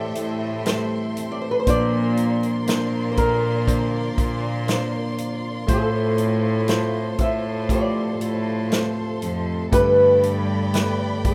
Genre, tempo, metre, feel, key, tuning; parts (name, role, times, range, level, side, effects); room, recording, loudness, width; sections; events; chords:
pop ballad; 60 BPM; 4/4; straight; A4 = 442 Hz
nylon-string guitar; melody; 0.0-11.3 s; A4 to E5; -25 LUFS; equal
bell-like tine electric piano; accompaniment; 0.0-11.3 s; G2 to C5; -28 LUFS; equal
warm studio string section; sustained chords; 0.0-11.3 s; F4 to C6; -34 LUFS; equal
fingerpicked steel-string acoustic guitar; arpeggios; 0.0-11.3 s; barely audible
rich chamber cello section; bass; 0.0-11.3 s; F2 to Bb2; -28 LUFS; equal
natural country drum kit; drums; 0.2-11.3 s; hi-hat, kick drum, snare drum; -26 LUFS; equal
little or no reverb; rough home demo mix; -22 LUFS; mono
0.0-11.3 A section
0.0 Am7; 1.7 Bbadd9; 5.7 F/A; 9.7 Gadd9